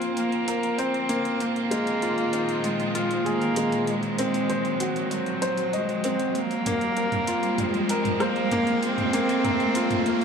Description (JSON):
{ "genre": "piano and strings electronica", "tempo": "97 BPM", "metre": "4/4", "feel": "straight", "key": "unclear", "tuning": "A4 = 440 Hz", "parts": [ { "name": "rich cello", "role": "melody", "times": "0.0-10.2 s", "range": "Gb3 to C4", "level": "-27 LUFS", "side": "equal", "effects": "low-pass filter" }, { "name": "rich chamber string section", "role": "sustained chords", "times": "0.0-10.2 s", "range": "Bb2 to F4", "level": "-32 LUFS", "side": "right 2 dB", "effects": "none" }, { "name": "clear upright piano", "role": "riff", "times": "0.0-10.2 s", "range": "Ab3 to Eb5", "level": "-26 LUFS", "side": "left 1 dB", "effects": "digital delay" }, { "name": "deep house drum kit", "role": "drums", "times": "0.0-10.2 s", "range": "hi-hat, rim click, toms", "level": "-34 LUFS", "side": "equal", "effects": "overdrive" }, { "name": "riser", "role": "sound effects", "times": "0.0-10.2 s", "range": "none", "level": "-33 LUFS", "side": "right 2 dB", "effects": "none" } ], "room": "wet lush hall reverb, RT60 2.3 s", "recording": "none", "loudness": "-22 LUFS", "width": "side -6 dB against mid", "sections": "0.0-10.2 A section", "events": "build-up 0.0-10.2; riser 0.0-10.2", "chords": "0.0 Bbsus2; 1.4 Fm7/Bb; 3.9 Cdim/Bb; 6.4 Bbsus2" }